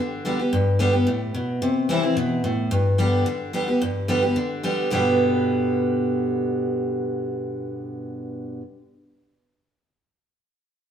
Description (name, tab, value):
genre	bluegrass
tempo	219 BPM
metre	4/4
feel	straight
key	G major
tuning	A4 = 440 Hz
part	picked steel-string acoustic guitar	solo	0.0-8.6 s	G2 to G4	-21 LUFS	equal	none
room	wet stone room reverb, RT60 1.4 s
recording	band playing live in one room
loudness	-20 LUFS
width	side -9 dB against mid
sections	0.0-3.8 A section; 3.8-4.9 B section; 4.9-7.1 C section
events	none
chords	0.0 Gadd9; 1.6 C; 2.7 G